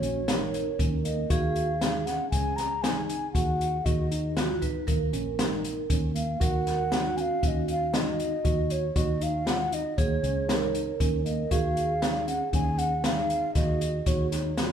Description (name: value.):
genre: progressive instrumental, band music in an uneven meter.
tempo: 118 BPM.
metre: 5/4.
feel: straight.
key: unclear.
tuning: A4 = 436 Hz.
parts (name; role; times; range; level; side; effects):
mellow hollow wooden flute; melody; 0.0-14.6 s; Db5 to Bb5; -31 LUFS; left 1 dB; none.
vibraphone with medium mallets; second line; 0.0-14.7 s; Gb4 to Cb5; -34 LUFS; right 7 dB; none.
mellow tine electric piano; arpeggios; 0.0-14.7 s; Bb3 to Gb4; -34 LUFS; right 2 dB; medium stereo tremolo.
fingered electric bass; bass; 0.0-14.7 s; Bb1 to Eb2; -31 LUFS; equal; none.
open jazz drum kit; drums; 0.0-14.7 s; hi-hat, kick drum, snare drum; -29 LUFS; equal; none.
room: moderate large studio reverb, RT60 1.5 s.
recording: band playing live in one room.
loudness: -24 LUFS.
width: side -8 dB against mid.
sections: 0.0-14.7 A section.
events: none.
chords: 0.0 Ebm7; 6.4 Gbsus2.